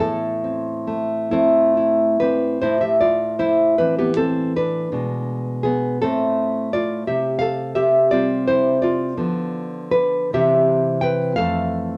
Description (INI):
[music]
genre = romantic piece for solo classical guitar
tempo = 45-60 BPM (dotted quarters)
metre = 6/8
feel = rubato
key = A minor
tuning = A4 = 440 Hz
[part]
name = nylon-string guitar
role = solo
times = 0.0-12.0 s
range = F2 to G5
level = -20 LUFS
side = equal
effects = none
[sound]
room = moderate studio reverb, RT60 0.9 s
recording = none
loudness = -20 LUFS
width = mono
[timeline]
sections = 0.0-2.6 A section; 2.6-12.0 B section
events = none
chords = 0.0 Am; 4.9 G#dim/B; 6.0 Am; 7.1 C; 9.2 Bdim/D; 10.3 C; 11.4 Fmaj7